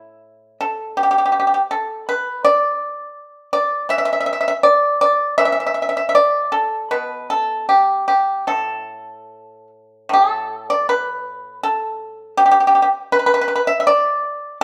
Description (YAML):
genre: chinese traditional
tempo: 72-84 BPM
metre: 4/4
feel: rubato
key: A shang mode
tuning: A4 = 441 Hz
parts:
  - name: pipa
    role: solo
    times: 0.0-14.6 s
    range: A2 to E5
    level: -18 LUFS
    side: equal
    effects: none
room: moderate large studio reverb, RT60 1.2 s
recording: band playing live in one room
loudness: -18 LUFS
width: mono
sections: 0.0-10.1 A section; 10.1-14.6 B section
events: none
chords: none